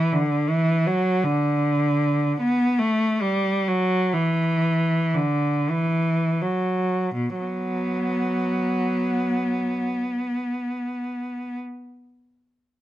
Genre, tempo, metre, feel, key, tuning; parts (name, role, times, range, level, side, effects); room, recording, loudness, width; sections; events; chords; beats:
classical, free, expressive piece for unaccompanied cello; 36-81 BPM; 3/4; rubato; B minor; A4 = 440 Hz
rich cello; solo; 0.0-11.6 s; B2 to B3; -21 LUFS; equal
light reverb; close, detailed microphones; -21 LUFS; side -13 dB against mid
0.0-7.1 A section; 7.1-10.8 B section
slowing down 0.1-7.1
0.49 | 1.23 2.00 2.78 | 3.66 4.62 5.71 | 7.14 8.38 9.59